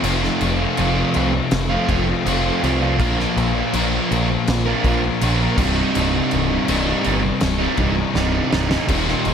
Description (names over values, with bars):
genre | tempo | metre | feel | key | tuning
quiet-loud alternative rock | 81 BPM | 4/4 | straight | C dorian | A4 = 440 Hz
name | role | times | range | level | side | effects
overdriven electric guitar | riff | 0.0-9.3 s | C2 to Bb4 | -25 LUFS | left 8 dB | none
sludgy distorted guitar | riff | 0.0-9.3 s | C2 to Bb4 | -23 LUFS | right 8 dB | overdrive, slapback echo
thick fuzz guitar | riff | 0.0-9.3 s | C2 to Bb3 | -24 LUFS | equal | distortion, slapback echo
growling picked electric bass | bass | 0.0-9.3 s | C1 to C2 | -23 LUFS | equal | overdrive
loose indie drum kit | drums | 0.0-9.3 s | crash cymbal, kick drum, snare drum | -23 LUFS | left 1 dB | none
room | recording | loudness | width
moderate lush hall reverb, RT60 2.5 s | big arena sound | -16 LUFS | side -7 dB against mid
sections
0.0-9.3 A section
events
drum fill 8.2-8.9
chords
0.0 F; 3.0 Bb; 5.6 Cm